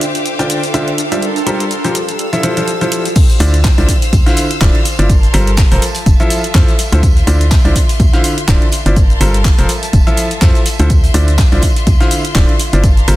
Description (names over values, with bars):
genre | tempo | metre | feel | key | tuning
piano house | 124 BPM | 4/4 | swing 56% on 16ths | D minor | A4 = 441 Hz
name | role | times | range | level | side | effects
bright studio string section | sustained chords | 0.0-13.2 s | F4 to E6 | -24 LUFS | left 1 dB | sidechain pumping
clear grand piano | riff | 0.0-13.2 s | D3 to G5 | -17 LUFS | equal | sidechain pumping, tape echo
garage drum kit | drums | 0.0-13.2 s | crash cymbal, handclaps, hi-hat, shaker | -21 LUFS | equal | overdrive, small room ambience
granular cloud pad | texture | 0.0-3.2 s | D4 to E6 | -22 LUFS | right 1 dB | built-in reverb, sidechain pumping
electronic kick drum | drums | 3.2-12.9 s | none | -11 LUFS | equal | small room ambience
loose indie drum kit | drums | 3.2-13.2 s | hi-hat, snare drum, tambourine | -29 LUFS | equal | none
organ-like FM bass | bass | 3.4-13.2 s | D1 to F2 | -12 LUFS | equal | sidechain pumping
room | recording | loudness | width
small room ambience | dense, heavily limited modern master | -10 LUFS | side -16 dB against mid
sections
0.0-3.2 A section; 3.2-13.2 B section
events
drop 3.2-13.2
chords
0.0 Dm9; 1.2 Gm11; 1.9 Fmaj7; 3.2 Dm9; 5.1 Gm11; 5.8 Fmaj7; 7.0 Dm9; 9.0 Gm11; 9.7 Fmaj7; 10.9 Dm9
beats
0.26 0.74 | 1.22 1.71 2.19 2.67 | 3.16 3.64 4.13 4.61 | 5.09 5.58 6.06 6.55 | 7.03 7.51 8.00 8.48 | 8.96 9.45 9.93 10.42 | 10.90 11.38 11.87 12.35 | 12.84